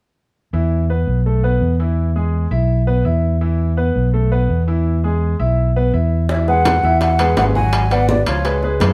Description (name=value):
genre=latin, salsa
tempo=167 BPM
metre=4/4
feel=straight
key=E major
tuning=A4 = 440 Hz
part: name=bright grand piano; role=accompaniment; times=0.5-8.9 s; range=E3 to F#5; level=-23 LUFS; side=equal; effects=none
part: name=fingered electric bass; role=bass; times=0.5-8.9 s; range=G#1 to F#2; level=-19 LUFS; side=equal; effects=none
part: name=mellow silver concert flute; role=melody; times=6.3-8.8 s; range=C#5 to G#5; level=-20 LUFS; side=equal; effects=none
part: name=bongos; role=percussion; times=6.3-8.9 s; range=none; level=-29 LUFS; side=equal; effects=none
part: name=congas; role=percussion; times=6.3-8.9 s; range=none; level=-28 LUFS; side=equal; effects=none
part: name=timbales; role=percussion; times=6.7-8.9 s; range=none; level=-26 LUFS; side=equal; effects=none
room=moderate stone room reverb, RT60 0.9 s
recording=band playing live in one room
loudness=-17 LUFS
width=mono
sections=0.5-6.3 A section; 6.3-8.9 B section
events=none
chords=0.5 E5; 1.3 B7sus4; 2.0 E; 2.7 E5; 4.1 B7sus4; 4.9 E; 5.6 Bsus4; 6.3 Eadd9; 7.7 G#m7b5